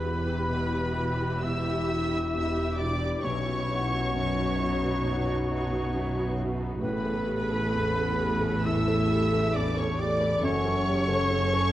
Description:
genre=cinematic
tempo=67 BPM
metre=4/4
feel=rubato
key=E dorian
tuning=A4 = 440 Hz
part: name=warm studio violin section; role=melody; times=0.0-11.7 s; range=B5 to E6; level=-36 LUFS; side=left 2 dB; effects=none
part: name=bright oboe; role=second line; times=0.0-11.7 s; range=B4 to E5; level=-34 LUFS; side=right 1 dB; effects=none
part: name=rich symphonic violin section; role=second line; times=0.0-11.7 s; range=B4 to E5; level=-36 LUFS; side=left 2 dB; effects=none
part: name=warm grand piano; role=accompaniment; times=0.0-11.7 s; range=A1 to A4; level=-34 LUFS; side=equal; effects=none
part: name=warm symphonic viola section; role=accompaniment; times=0.0-11.7 s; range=C#3 to A4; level=-34 LUFS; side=right 2 dB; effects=none
part: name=mellow French horn section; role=sustained chords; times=0.0-11.7 s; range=B3 to D5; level=-34 LUFS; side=left 2 dB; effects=none
part: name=concert harp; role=arpeggios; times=0.0-11.7 s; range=E2 to B4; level=-35 LUFS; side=left 4 dB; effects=none
part: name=rich symphonic cello section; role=bass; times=0.0-11.7 s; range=E2 to B2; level=-34 LUFS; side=right 2 dB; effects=none
part: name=rich symphonic double bass section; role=bass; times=0.0-11.7 s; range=E1 to B1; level=-32 LUFS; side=right 1 dB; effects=none
room=wet recital hall reverb, RT60 1.4 s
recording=worn, warbling old tape, cassette tape, warbly pitch drift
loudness=-25 LUFS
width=side -14 dB against mid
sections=0.0-11.7 A section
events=none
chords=0.0 Em; 3.2 Badd9; 6.8 Aadd9; 10.4 F#m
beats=0.49 1.43 2.34 | 3.24 4.14 5.04 5.94 | 6.83 7.73 8.65 9.55 | 10.44 11.31

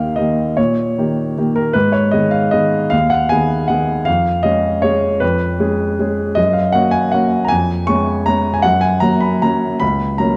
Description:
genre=classical, piano waltz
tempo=156 BPM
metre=3/4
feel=uneven beats, rubato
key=F# major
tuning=A4 = 440 Hz
part: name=warm baby grand piano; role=solo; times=0.0-10.4 s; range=C#2 to C#6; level=-16 LUFS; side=equal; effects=none
room=moderate recital hall reverb, RT60 1.4 s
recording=dark, warm production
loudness=-16 LUFS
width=mono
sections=0.0-10.4 A section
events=none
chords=0.0 D#7; 1.8 G#m; 4.1 C#7/E#; 6.4 F#; 7.5 C#7/E#; 8.6 F#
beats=0.17 | 0.57 0.97 1.37 | 1.75 2.12 2.52 | 2.92 3.31 3.69 | 4.07 4.45 4.83 | 5.22 5.61 6.00 | 6.38 6.74 7.12 | 7.50 7.88 8.27 | 8.64 9.03 9.43 | 9.82 10.20

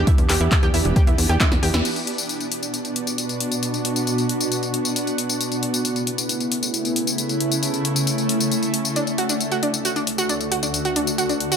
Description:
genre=uplifting trance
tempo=135 BPM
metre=4/4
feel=straight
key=B minor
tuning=A4 = 439 Hz
part: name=shimmering ambient pad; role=sustained chords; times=0.0-11.6 s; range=D2 to G4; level=-23 LUFS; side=equal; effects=chorus, built-in reverb, sidechain pumping
part: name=tight sequencer bass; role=bass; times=0.0-1.8 s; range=E1 to E2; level=-20 LUFS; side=equal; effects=sidechain pumping
part: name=analog pluck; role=arpeggios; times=0.1-1.8, 9.0-11.6 s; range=D4 to G4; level=-25 LUFS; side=right 3 dB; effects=chorus, sidechain pumping, tape echo
part: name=electronic kick drum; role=drums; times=0.1-1.5 s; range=none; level=-18 LUFS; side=equal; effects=none
part: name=punchy analog drum machine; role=drums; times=0.1-11.6 s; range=crash cymbal, handclaps, hi-hat, snare drum, tambourine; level=-24 LUFS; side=left 3 dB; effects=none
room=moderate digital room reverb, RT60 1.2 s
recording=none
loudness=-19 LUFS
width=side -7 dB against mid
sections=0.0-1.9 A section; 1.9-11.6 B section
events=drum fill 1.4-1.9; band accent 1.7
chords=0.0 Em7; 1.9 Bm; 5.4 Aadd9/C#; 9.0 D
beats=| 0.07 0.52 0.96 1.41 | 1.85 2.29 2.74 3.18 | 3.63 4.07 4.52 4.96 | 5.41 5.85 6.29 6.74 | 7.18 7.63 8.07 8.52 | 8.96 9.41 9.85 10.29 | 10.74 11.18

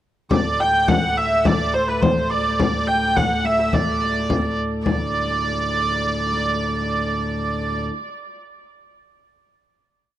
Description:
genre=medieval dance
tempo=106 BPM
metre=2/4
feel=straight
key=D mixolydian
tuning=A4 = 440 Hz
part: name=warm hurdy-gurdy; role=melody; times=0.3-7.8 s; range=B4 to G5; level=-20 LUFS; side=right 2 dB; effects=tape echo
part: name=chamber organ, principal chorus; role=drone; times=0.3-7.9 s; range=D2 to A2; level=-26 LUFS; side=equal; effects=stereo widening
part: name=frame drum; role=percussion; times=0.3-5.1 s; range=none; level=-20 LUFS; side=left 3 dB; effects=none
room=light reverb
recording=dry, close 1970s-style studio recording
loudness=-18 LUFS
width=side -12 dB against mid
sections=0.3-4.9 A section; 4.9-7.1 final chord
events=none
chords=none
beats=| 0.31 0.88 | 1.45 2.02 | 2.59 3.16 | 3.73 4.29 | 4.86 5.42 | 5.98 6.53

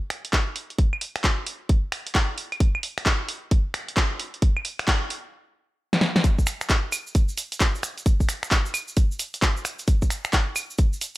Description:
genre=UK garage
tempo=132 BPM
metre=4/4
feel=swing 64% on 16ths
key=none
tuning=none
part: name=punchy analog drum machine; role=drums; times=0.1-11.1 s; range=claves, finger snaps, handclaps, hi-hat, snare drum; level=-25 LUFS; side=equal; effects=none
part: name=electronic kick drum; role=drums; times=0.3-10.9 s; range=none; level=-21 LUFS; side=equal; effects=none
part: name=tube shaker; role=percussion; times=6.2-11.2 s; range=none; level=-34 LUFS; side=right 2 dB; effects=none
room=little or no reverb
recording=none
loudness=-22 LUFS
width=side -19 dB against mid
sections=0.0-6.2 A section; 6.2-11.2 B section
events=build-up 0.0-6.2; drum fill 5.9-6.2; drop 6.2-11.2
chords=none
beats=0.33 | 0.79 1.24 1.70 2.15 | 2.60 3.06 3.51 3.97 | 4.42 4.88 5.33 5.79 | 6.24 6.70 7.15 7.60 | 8.06 8.51 8.97 9.42 | 9.88 10.33 10.79

